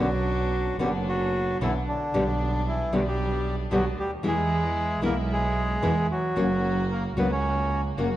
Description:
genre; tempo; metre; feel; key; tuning
tango; 112 BPM; 4/4; rubato; B harmonic minor; A4 = 440 Hz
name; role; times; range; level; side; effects
bandoneon; melody; 0.0-7.8 s; D3 to C#5; -28 LUFS; equal; none
nylon-string guitar; accompaniment; 0.0-8.1 s; B2 to G4; -29 LUFS; left 1 dB; none
rich chamber string section; stabs; 0.0-8.2 s; G3 to F#4; -35 LUFS; equal; none
rich double bass; bass; 0.0-8.2 s; F#1 to E2; -28 LUFS; right 2 dB; none
room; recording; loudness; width
moderate scoring stage reverb, RT60 2.0 s; worn, warbling old tape, cassette tape, warbly pitch drift; -23 LUFS; side -14 dB against mid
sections
0.0-8.2 A section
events
none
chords
0.0 Bmadd9; 2.1 G/B; 4.2 E; 6.4 F#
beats
0.52 1.06 1.60 | 2.13 2.66 3.19 3.72 | 4.24 4.77 5.30 5.83 | 6.36 6.90 7.44 7.98

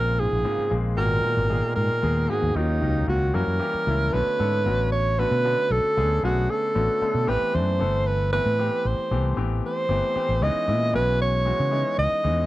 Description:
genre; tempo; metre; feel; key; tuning
jazz; 76 BPM (dotted quarters); 6/8; straight; B dorian from 4.1 s; A4 = 440 Hz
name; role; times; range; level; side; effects
mellow alto saxophone; melody; 0.0-12.5 s; Eb4 to D#5; -24 LUFS; right 2 dB; none
breathy bass clarinet; second line; 0.0-3.4 s; Eb2 to Bb2; -30 LUFS; right 2 dB; none
clear baby grand piano; accompaniment; 0.0-12.5 s; Db3 to A4; -29 LUFS; left 5 dB; none
fretless electric bass; bass; 0.0-12.5 s; G1 to C#3; -24 LUFS; equal; none
room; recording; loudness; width
little or no reverb; dry, close 1970s-style studio recording; -21 LUFS; side -16 dB against mid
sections
0.0-4.1 A section; 4.1-12.5 B section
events
none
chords
0.0 Bbm9; 1.0 Abm9; 2.6 Ebm9; 3.3 Gb7b9; 4.1 Bm9; 7.3 Am9; 10.4 C#m9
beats
0.18 | 0.97 1.76 | 2.55 3.34 | 4.13 4.92 | 5.71 6.49 | 7.28 8.06 | 8.85 9.63 | 10.41 11.20 | 11.98

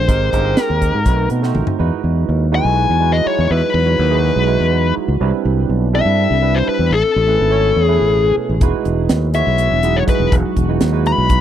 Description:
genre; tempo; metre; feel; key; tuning
electric jazz fusion; 246 BPM (eighths); 7/8; straight; E major; A4 = 440 Hz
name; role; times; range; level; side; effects
bluesy overdriven lead guitar; melody; 0.0-11.4 s; A4 to B5; -17 LUFS; left 5 dB; distortion, tape echo
barky tine electric piano; accompaniment; 0.0-11.4 s; G3 to C#5; -21 LUFS; right 14 dB; medium stereo tremolo, lush chorus
fingered electric bass; bass; 0.0-11.4 s; E1 to B2; -17 LUFS; equal; none
crisp fusion drum kit; drums; 0.1-1.8, 8.6-11.4 s; hi-hat, kick drum, snare drum, toms; -18 LUFS; equal; none
evolving wavetable pad; sustained chords; 2.4-11.4 s; B2 to G#5; -26 LUFS; left 1 dB; phaser, built-in reverb
room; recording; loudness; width
light reverb; dry, close 1970s-style studio recording; -13 LUFS; side -10 dB against mid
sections
0.0-1.8 A section; 1.8-11.4 B section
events
drum fill 1.4-1.8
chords
0.1 Abmaj9; 1.1 B7b9; 1.8 Emaj9; 5.2 Cmaj9; 6.9 Amaj9; 8.6 Emaj9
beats
| 0.09 0.33 0.58 0.82 1.06 1.31 1.55 | 1.80 2.04 2.29 2.53 2.77 3.02 3.26 | 3.51 3.75 3.99 4.24 4.48 4.72 4.97 | 5.21 5.46 5.70 5.94 6.19 6.43 6.67 | 6.92 7.16 7.41 7.65 7.89 8.14 8.38 | 8.62 8.87 9.11 9.36 9.60 9.84 10.09 | 10.33 10.57 10.82 11.06 11.31

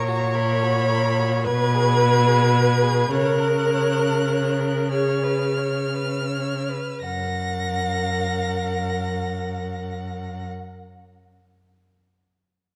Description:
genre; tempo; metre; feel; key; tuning
classical, slow romantic movement for string quartet; 26-39 BPM (dotted quarters); 6/8; rubato; F# major; A4 = 436 Hz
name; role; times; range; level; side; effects
warm violin; melody; 0.0-10.4 s; A#5 to A#6; -34 LUFS; equal; none
warm violin; second line; 0.0-10.5 s; F#4 to F#5; -33 LUFS; equal; none
warm viola; accompaniment; 0.0-10.5 s; G#4 to C#5; -26 LUFS; equal; none
rich cello; bass; 0.0-10.5 s; F#2 to C#3; -26 LUFS; equal; none
room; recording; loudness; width
moderate concert hall reverb, RT60 2.2 s; dark, warm production; -22 LUFS; mono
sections
0.0-7.0 A section; 7.0-11.2 B section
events
slowing down 0.0-7.0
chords
0.0 F#/A#; 1.5 G#m/B; 3.1 F#/C#; 4.9 C#7; 7.0 F#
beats
1.46 | 3.12 4.91 | 7.03 9.13

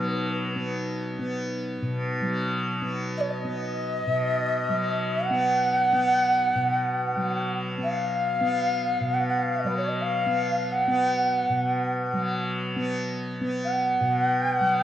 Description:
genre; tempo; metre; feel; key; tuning
world meditative, free-time meditation music; free time; none; none; B lydian; A4 = 443 Hz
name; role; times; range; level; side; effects
mellow Native American-style cedar flute; melody; 0.0-14.8 s; B4 to F#5; -24 LUFS; equal; none
tanpura; drone; 0.0-14.8 s; B2 to B3; -27 LUFS; equal; none
quartz singing bowl; texture; 0.0-1.1 s; D#4; -43 LUFS; left 2 dB; none
room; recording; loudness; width
wet scoring stage reverb, RT60 1.6 s; worn, warbling old tape, cassette tape, warbly pitch drift; -23 LUFS; side -11 dB against mid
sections
0.0-2.2 A section; 2.2-14.8 A section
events
none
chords
none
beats
free time

